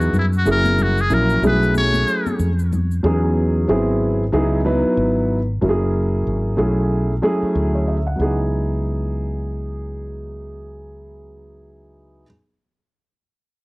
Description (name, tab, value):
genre	hip hop, jazz-hop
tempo	93 BPM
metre	4/4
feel	swing 60% on 16ths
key	C# minor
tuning	A4 = 440 Hz
part	trumpet with metal mute	melody	0.0-2.4 s	E4 to C#5	-21 LUFS	left 1 dB	cassette tape
part	dark grand piano	accompaniment	0.0-12.2 s	F#3 to F#5	-20 LUFS	equal	cassette tape
part	mellow fretless electric bass	bass	0.0-12.2 s	F#1 to F#2	-21 LUFS	equal	none
part	tube shaker and congas	percussion	0.0-3.0 s	none	-27 LUFS	left 3 dB	none
room	moderate small room reverb, RT60 0.6 s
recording	home recording on cassette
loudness	-16 LUFS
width	side -23 dB against mid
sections	0.0-3.0 A section; 3.0-8.2 B section; 8.2-10.8 C section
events	none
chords	0.5 F#9; 1.4 B13sus4; 3.0 Emaj13; 3.7 G#7alt; 4.3 C#m11; 5.6 F#9; 6.6 B13sus4; 8.2 C#m11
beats	| 0.46 1.10 1.75 2.39 | 3.04 3.68 4.33 4.97 | 5.62 6.26 6.91 7.55 | 8.20 8.84 9.49 10.13